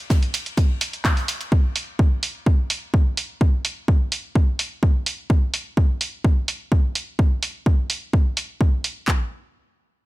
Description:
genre	melodic techno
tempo	127 BPM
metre	4/4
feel	straight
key	none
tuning	none
part	house drum kit	drums	0.1-9.2 s	handclaps, kick drum	-17 LUFS	equal	overdrive, studio reverb
part	natural country drum kit	drums	0.1-1.5 s	ride cymbal, snare drum	-38 LUFS	left 4 dB	sidechain pumping on cymbals, high-pass filter on cymbals, studio reverb, high-pass filter on snare, high-pass filter on room
part	punchy analog drum machine	drums	0.1-8.9 s	handclaps, hi-hat	-24 LUFS	right 2 dB	sidechain pumping on hats, studio reverb
room	small room ambience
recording	none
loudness	-19 LUFS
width	side -19 dB against mid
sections	0.0-9.1 A section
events	none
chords	none

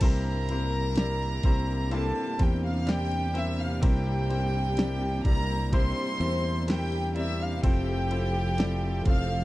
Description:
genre	pop ballad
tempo	63 BPM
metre	4/4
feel	straight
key	unclear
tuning	A4 = 444 Hz
part	warm studio violin section	melody	0.0-9.4 s	G4 to F6	-32 LUFS	equal	none
part	clear grand piano	accompaniment	0.0-9.4 s	G2 to D5	-34 LUFS	left 3 dB	none
part	rich studio string section	sustained chords	0.0-9.4 s	C3 to A4	-36 LUFS	right 3 dB	none
part	fingered electric bass	bass	0.0-9.4 s	F1 to E2	-29 LUFS	equal	none
part	pop drum kit	drums	0.0-9.3 s	crash cymbal, kick drum, ride cymbal, snare drum	-25 LUFS	equal	none
room	little or no reverb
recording	dry, close 1970s-style studio recording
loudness	-25 LUFS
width	side -17 dB against mid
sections	0.0-9.4 A section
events	none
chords	0.0 C7; 7.6 Fmaj7

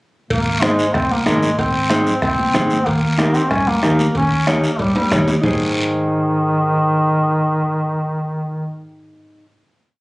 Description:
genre	latin, cumbia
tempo	187 BPM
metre	4/4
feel	straight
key	Ab major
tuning	A4 = 440 Hz
part	clear duduk	second line	0.3-8.8 s	Eb3 to Db4	-18 LUFS	equal	none
part	hollow-body short-scale fingered electric bass	bass	0.3-9.5 s	Ab1 to G2	-23 LUFS	equal	none
part	bombo	percussion	0.3-5.5 s	none	-24 LUFS	equal	none
part	cowbell and timbales	percussion	0.3-5.5 s	none	-26 LUFS	right 1 dB	none
part	guiro	percussion	0.3-5.5 s	none	-27 LUFS	equal	none
part	congas	percussion	0.5-5.5 s	none	-24 LUFS	equal	none
part	mellow electric guitar	accompaniment	0.6-9.5 s	Eb4 to Db5	-20 LUFS	equal	none
room	moderate studio reverb, RT60 0.6 s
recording	recorded on a phone in the room, club reverb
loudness	-15 LUFS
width	side -22 dB against mid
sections	0.3-5.4 groove; 5.4-8.0 final chord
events	drum fill 5.0-5.4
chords	0.3 Ab; 2.9 Eb7; 5.4 Ab

